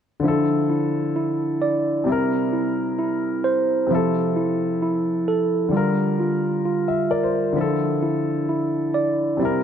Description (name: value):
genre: hip hop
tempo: 131 BPM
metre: 4/4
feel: half-time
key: D minor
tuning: A4 = 439 Hz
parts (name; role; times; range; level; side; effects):
- dark concert grand piano; accompaniment; 0.2-9.6 s; C3 to E5; -24 LUFS; left 4 dB; low-pass filter
- mellow tine electric piano; arpeggios; 0.2-9.6 s; F3 to D5; -21 LUFS; right 3 dB; low-pass filter, digital delay
room: wet concert hall reverb, RT60 1.7 s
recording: none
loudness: -19 LUFS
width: side -8 dB against mid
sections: 0.2-9.6 A section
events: grand piano fill 6.7-7.6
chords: 0.2 Dmadd9; 2.1 C7; 3.9 Fmaj7; 5.7 Gm7; 7.6 Dmadd9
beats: | 0.24 0.70 1.16 1.61 | 2.07 2.53 2.99 3.45 | 3.90 4.36 4.82 5.28 | 5.74 6.20 6.65 7.11 | 7.57 8.03 8.48 8.94 | 9.40